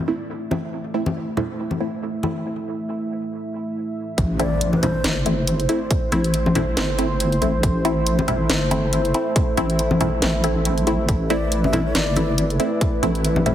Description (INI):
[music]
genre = deep dubstep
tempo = 139 BPM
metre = 4/4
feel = swing 57% on 16ths, half-time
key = A minor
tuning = A4 = 440 Hz
[part]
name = dark analog pad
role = sustained chords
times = 0.0-13.5 s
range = A3 to E5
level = -26 LUFS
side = right 1 dB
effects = chorus
[part]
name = filtered dub chord stab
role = stabs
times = 0.1-13.5 s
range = A3 to E4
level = -25 LUFS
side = equal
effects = phaser, dub echo
[part]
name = congas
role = percussion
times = 0.5-13.5 s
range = none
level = -27 LUFS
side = left 2 dB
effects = dub echo
[part]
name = deep soft wobble bass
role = bass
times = 4.2-13.5 s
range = G1 to A1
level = -22 LUFS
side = equal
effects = chorus
[part]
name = electronic kick drum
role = drums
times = 4.2-12.9 s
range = none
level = -21 LUFS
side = equal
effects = small room ambience
[part]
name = garage drum kit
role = drums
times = 4.2-13.5 s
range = hi-hat, snare drum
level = -25 LUFS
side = equal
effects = low-pass filter on hats, small room ambience, low-pass filter on snare
[part]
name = impact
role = sound effects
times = 4.2-5.9 s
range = none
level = -31 LUFS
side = equal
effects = none
[part]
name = breathy low ney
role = melody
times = 4.4-5.2, 11.3-12.5 s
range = C5 to E5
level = -30 LUFS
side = left 3 dB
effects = dub echo
[sound]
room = moderate lush hall reverb, RT60 1.9 s, digital ambience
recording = heavily compressed radio sound, multiband compression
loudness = -19 LUFS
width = side -11 dB against mid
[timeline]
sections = 0.0-4.2 A section; 4.2-13.5 B section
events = break 2.5-4.2; drop 4.2-13.5; impact 4.2-5.9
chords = 0.0 A5; 4.2 Am